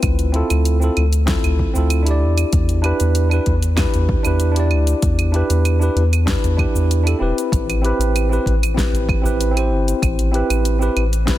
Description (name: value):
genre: sunset chillout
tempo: 96 BPM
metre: 4/4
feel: straight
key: unclear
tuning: A4 = 439 Hz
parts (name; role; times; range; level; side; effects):
- tine electric piano; accompaniment; 0.0-11.4 s; C4 to D5; -21 LUFS; moving between left 5 dB and right 4 dB; auto-pan, ping-pong delay
- round analog bass; bass; 0.0-11.4 s; E1 to E2; -17 LUFS; equal; none
- deep house drum kit; drums; 0.0-11.4 s; cabasa, claves, hi-hat, snare drum; -26 LUFS; right 2 dB; none
- electronic kick drum; drums; 0.0-11.4 s; none; -21 LUFS; equal; none
room: digital ambience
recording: dense, heavily limited modern master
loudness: -15 LUFS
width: side -14 dB against mid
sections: 0.0-11.4 A section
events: none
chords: 0.0 Dm9; 2.2 Em7; 7.5 Am9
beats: | 0.03 0.65 1.28 1.90 | 2.53 3.15 3.78 4.40 | 5.03 5.65 6.28 6.90 | 7.53 8.15 8.78 9.40 | 10.03 10.65 11.28